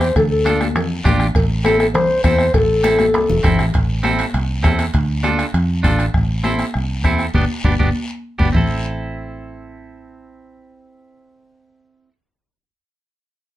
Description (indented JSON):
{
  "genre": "latin, cumbia",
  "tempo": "200 BPM",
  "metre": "4/4",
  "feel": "straight",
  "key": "A minor",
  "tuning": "A4 = 440 Hz",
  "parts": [
    { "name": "warm clarinet", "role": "melody", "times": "0.0-3.6 s", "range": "A4 to C5", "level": "-17 LUFS", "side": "left 2 dB", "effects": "plate reverb" },
    { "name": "clean electric guitar", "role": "accompaniment", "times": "0.0-12.1 s", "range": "B3 to A4", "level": "-22 LUFS", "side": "right 3 dB", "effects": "none" },
    { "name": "fingered electric bass", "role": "bass", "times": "0.0-12.1 s", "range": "E1 to F2", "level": "-19 LUFS", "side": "right 1 dB", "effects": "none" },
    { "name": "bombo", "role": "percussion", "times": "0.0-8.6 s", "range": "none", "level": "-20 LUFS", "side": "equal", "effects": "none" },
    { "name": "guiro", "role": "percussion", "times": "0.0-8.6 s", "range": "none", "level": "-34 LUFS", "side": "left 3 dB", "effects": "none" },
    { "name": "congas", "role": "percussion", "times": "0.2-8.6 s", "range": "none", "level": "-24 LUFS", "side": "left 3 dB", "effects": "none" },
    { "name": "cowbell and timbales", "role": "percussion", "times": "0.2-6.1 s", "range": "none", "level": "-30 LUFS", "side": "right 3 dB", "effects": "none" }
  ],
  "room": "moderate studio ambience, RT60 0.5 s",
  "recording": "none",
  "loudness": "-14 LUFS",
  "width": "side -14 dB against mid",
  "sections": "0.0-3.7 A section; 3.7-8.5 B section; 8.5-10.9 C section",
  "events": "drum fill 2.8-3.7; band accent 7.3-8.5; clean electric guitar fill 7.6-8.5",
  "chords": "0.2 Dm; 1.4 Am; 4.9 Dm; 6.1 Am; 7.3 G; 8.5 Am"
}